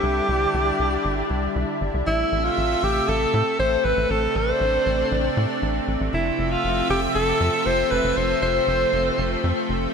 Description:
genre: synthwave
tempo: 118 BPM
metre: 4/4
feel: straight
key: A minor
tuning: A4 = 442 Hz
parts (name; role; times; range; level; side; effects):
- clear alto saxophone; melody; 0.0-9.4 s; E4 to C5; -22 LUFS; equal; vintage 12-bit sampler grit, ping-pong delay
- lush unison pad; sustained chords; 0.0-9.9 s; C3 to E5; -25 LUFS; equal; chorus
- tight sequencer bass; bass; 0.0-9.9 s; F1 to A2; -26 LUFS; equal; none
room: moderate lush hall reverb, RT60 2.7 s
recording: bright 1980s-style digital production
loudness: -19 LUFS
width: side -6 dB against mid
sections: 0.0-2.1 A section; 2.1-9.9 B section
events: none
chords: 0.0 Cadd9; 2.1 Am; 6.1 Fmaj7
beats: | 0.03 0.54 1.05 1.56 | 2.07 2.58 3.08 3.59 | 4.10 4.61 5.12 5.63 | 6.13 6.64 7.15 7.66 | 8.17 8.68 9.19 9.69

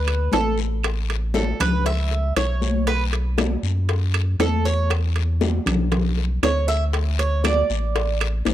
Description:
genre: latin, Cuban son and guajira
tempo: 118 BPM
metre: 4/4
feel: straight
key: A major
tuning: A4 = 440 Hz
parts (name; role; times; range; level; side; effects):
- Cuban tres; arpeggios; 0.0-8.2 s; A4 to E5; -25 LUFS; right 4 dB; none
- pure sine sub bass; bass; 0.0-8.5 s; A1 to F#2; -22 LUFS; equal; none
- bongos; percussion; 0.1-8.5 s; none; -29 LUFS; left 9 dB; none
- claves; percussion; 0.1-8.5 s; none; -32 LUFS; right 12 dB; none
- congas; percussion; 0.1-8.5 s; none; -27 LUFS; left 2 dB; none
- timbales; percussion; 0.1-8.5 s; none; -28 LUFS; right 8 dB; none
- guiro; percussion; 0.3-8.5 s; none; -36 LUFS; left 16 dB; none
room: studio reverb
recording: dry, close 1970s-style studio recording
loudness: -19 LUFS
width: side -12 dB against mid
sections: 0.0-8.5 A section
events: Cuban tres solo 0.0-8.5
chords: 0.0 D5; 0.8 Aadd9; 2.9 B5; 4.9 E5; 6.9 D5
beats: 0.33 | 0.84 1.35 1.86 2.37 | 2.87 3.38 3.89 4.40 | 4.91 5.42 5.92 6.43 | 6.94 7.45 7.96 8.46

